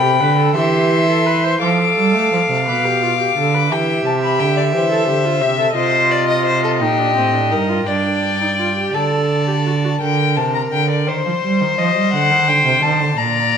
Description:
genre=classical, baroque-style fugue for string quartet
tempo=57 BPM (dotted quarters)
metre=6/8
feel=straight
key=unclear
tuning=A4 = 440 Hz
part: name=dark violin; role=melody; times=0.0-13.6 s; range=C5 to D6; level=-19 LUFS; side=left 8 dB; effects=none
part: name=rich violin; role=second line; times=0.0-13.6 s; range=G4 to G5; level=-19 LUFS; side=left 3 dB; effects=none
part: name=warm viola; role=accompaniment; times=0.0-9.9 s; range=C4 to C5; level=-21 LUFS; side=right 2 dB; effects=none
part: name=rich cello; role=bass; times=0.0-13.6 s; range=G2 to A3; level=-19 LUFS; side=right 4 dB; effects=none
room=wet recital hall reverb, RT60 1.4 s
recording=none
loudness=-14 LUFS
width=side -7 dB against mid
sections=0.0-1.6 A section; 1.6-10.0 B section; 10.0-13.6 C section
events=none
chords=0.0 G; 0.6 C/E; 1.6 Dm/F; 2.7 Bdim; 3.7 Em; 4.7 C; 5.8 Cm; 7.9 Dsus4/G; 8.9 D; 10.0 Gm; 11.1 Cm/Eb; 12.1 D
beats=0.56 | 1.62 2.68 | 3.72 4.74 | 5.77 6.81 | 7.87 8.94 | 10.02 11.08 | 12.13 13.17

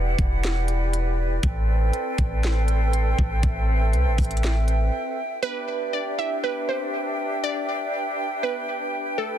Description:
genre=hip hop, atmospheric cloud-rap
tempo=120 BPM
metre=4/4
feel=half-time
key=E minor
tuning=A4 = 440 Hz
part: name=bright large flute ensemble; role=sustained chords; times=0.0-9.4 s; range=C4 to G5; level=-27 LUFS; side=right 1 dB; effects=sidechain pumping
part: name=soft 808-style bass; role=bass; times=0.0-4.9 s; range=E1 to C2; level=-22 LUFS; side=equal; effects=none
part: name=trap drum kit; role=drums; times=0.2-4.8 s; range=hi-hat, kick drum, snare drum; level=-26 LUFS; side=equal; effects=vintage 12-bit sampler grit
part: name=glassy wavetable pluck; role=melody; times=5.4-9.4 s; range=A4 to E5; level=-28 LUFS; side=right 2 dB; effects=chorus, digital delay
room=digital ambience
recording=dense, heavily limited modern master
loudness=-22 LUFS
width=side -10 dB against mid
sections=0.0-5.4 A section; 5.4-9.4 B section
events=break 4.9-5.4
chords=0.0 Em7; 1.4 Am11; 5.4 Em7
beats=0.43 0.93 | 1.43 1.93 2.43 2.93 | 3.43 3.93 4.43 4.93 | 5.43 5.93 6.43 6.93 | 7.43 7.93 8.43 8.93

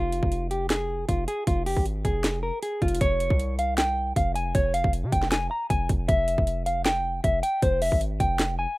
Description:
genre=hip hop, trap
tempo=156 BPM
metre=4/4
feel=half-time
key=F minor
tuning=A4 = 439 Hz
part: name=electric guitar at the edge of break-up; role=melody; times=0.0-8.8 s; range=F4 to Bb5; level=-26 LUFS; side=equal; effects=low-pass filter
part: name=distorted 808-style bass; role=bass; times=0.0-8.7 s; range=F1 to C3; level=-28 LUFS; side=equal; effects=distortion
part: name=trap drum kit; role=drums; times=0.1-8.5 s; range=handclaps, hi-hat, kick drum, snare drum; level=-26 LUFS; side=equal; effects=none
room=little or no reverb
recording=rough home demo mix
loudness=-23 LUFS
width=side -20 dB against mid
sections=0.0-3.0 A section; 3.0-8.8 B section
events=none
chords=0.0 Fm; 3.0 Db/F; 6.1 Fmaj7(no3)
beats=0.32 0.70 1.09 | 1.47 1.85 2.24 2.62 | 3.01 3.39 3.78 4.16 | 4.55 4.93 5.32 5.70 | 6.09 6.47 6.86 7.24 | 7.62 8.01 8.39

